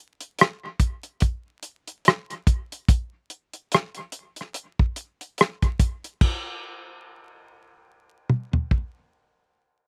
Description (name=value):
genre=R&B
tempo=72 BPM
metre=4/4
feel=swing 58% on 16ths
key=none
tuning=none
part: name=damped 70s drum kit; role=drums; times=0.2-8.9 s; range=crash cymbal, hi-hat, kick drum, rim click, toms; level=-22 LUFS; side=equal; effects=none
room=little or no reverb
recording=recorded outdoors, with no room sound, vinyl crackle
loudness=-25 LUFS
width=mono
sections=0.0-6.2 A section; 6.2-9.5 B section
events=none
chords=none